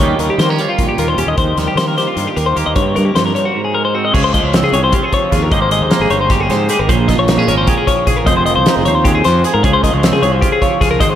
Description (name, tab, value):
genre	math rock and midwest emo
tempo	306 BPM (eighths)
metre	7/8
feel	straight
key	unclear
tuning	A4 = 440 Hz
part	twangy electric guitar	accompaniment	0.0-11.2 s	F2 to C5	-18 LUFS	right 7 dB	lush chorus
part	twelve-string electric guitar	arpeggios	0.0-11.2 s	F4 to Eb5	-15 LUFS	left 4 dB	spring reverb, analog delay, slapback echo
part	fuzz fingered electric bass	bass	0.0-11.2 s	F1 to Eb3	-18 LUFS	equal	overdrive
part	loose indie drum kit	drums	0.0-11.1 s	crash cymbal, hi-hat, kick drum, snare drum	-17 LUFS	equal	none
room	moderate lush hall reverb, RT60 1.9 s, studio reverb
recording	big arena sound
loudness	-11 LUFS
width	side -10 dB against mid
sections	0.0-4.1 A section; 4.1-11.2 B section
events	none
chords	0.0 Eb9; 1.4 Cm7/Eb; 2.8 Gm7b5; 3.6 Ab7; 4.1 Dbmaj7; 5.5 Abmaj9; 6.9 Bbm9; 8.3 Fm7; 9.6 Dbmaj7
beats	| 0.00 0.20 0.40 0.59 0.79 0.99 1.19 | 1.38 1.58 1.78 1.98 2.17 2.37 2.57 | 2.77 2.96 3.16 3.36 3.55 3.75 3.95 | 4.14 4.34 4.54 4.73 4.93 5.13 5.32 | 5.52 5.71 5.91 6.11 6.30 6.50 6.70 | 6.89 7.09 7.28 7.48 7.67 7.87 8.07 | 8.26 8.46 8.65 8.85 9.04 9.24 9.44 | 9.63 9.83 10.02 10.22 10.41 10.61 10.81 | 11.00